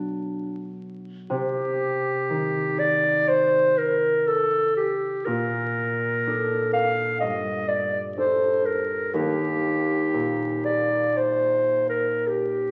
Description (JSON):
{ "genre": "classical, impressionist duo for clarinet and harp", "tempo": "50-64 BPM", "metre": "4/4", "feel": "rubato", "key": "unclear", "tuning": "A4 = 442 Hz", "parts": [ { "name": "warm clarinet", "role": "melody", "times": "0.0-12.7 s", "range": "D4 to F5", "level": "-25 LUFS", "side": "equal", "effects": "none" }, { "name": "concert harp", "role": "accompaniment", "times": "0.0-12.7 s", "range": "Eb2 to A4", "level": "-31 LUFS", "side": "equal", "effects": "none" } ], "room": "wet recital hall reverb, RT60 1.5 s", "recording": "very old 78 rpm record, vinyl crackle", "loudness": "-24 LUFS", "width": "mono", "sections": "0.0-12.7 A section", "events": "none", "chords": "0.0 Bm; 1.3 Cm; 5.3 Bbmaj7; 7.2 Gsus2; 9.1 Ebmaj7", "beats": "0.32 | 1.31 2.30 3.28 4.27 | 5.26 6.26 7.21 8.17 | 9.14 10.12 11.16 12.27" }